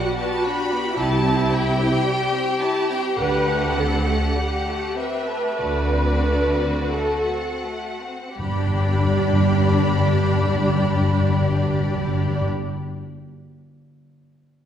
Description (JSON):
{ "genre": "classical, slow romantic movement for symphony orchestra", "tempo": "39-58 BPM", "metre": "4/4", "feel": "rubato", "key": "G major", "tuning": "A4 = 436 Hz", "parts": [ { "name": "rich studio violin section", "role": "melody", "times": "0.0-12.5 s", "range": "D5 to B5", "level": "-29 LUFS", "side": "left 1 dB", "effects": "none" }, { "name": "rich studio violin section", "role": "second line", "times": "0.0-12.4 s", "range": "G3 to D5", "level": "-26 LUFS", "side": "left 2 dB", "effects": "none" }, { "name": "rich symphonic viola section", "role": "accompaniment", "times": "0.0-12.5 s", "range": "G3 to B4", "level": "-24 LUFS", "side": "right 2 dB", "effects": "none" }, { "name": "dark symphonic cello section", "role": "bass", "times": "1.0-12.5 s", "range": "G2 to D3", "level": "-26 LUFS", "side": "right 1 dB", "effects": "none" }, { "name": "rich symphonic double bass section", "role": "bass", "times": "1.0-12.5 s", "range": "G1 to D2", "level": "-25 LUFS", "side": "equal", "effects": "none" }, { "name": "timpani", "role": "percussion", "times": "5.6-12.5 s", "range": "G2 to D3", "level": "-25 LUFS", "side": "left 1 dB", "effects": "none" } ], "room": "wet scoring stage reverb, RT60 1.6 s", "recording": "heard from further back in the room", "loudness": "-19 LUFS", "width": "side -9 dB against mid", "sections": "0.0-8.4 A section; 8.4-13.7 B section", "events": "slowing down 0.0-8.4", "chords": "0.0 G; 1.0 C; 3.2 D7sus4; 5.6 D7; 8.4 G" }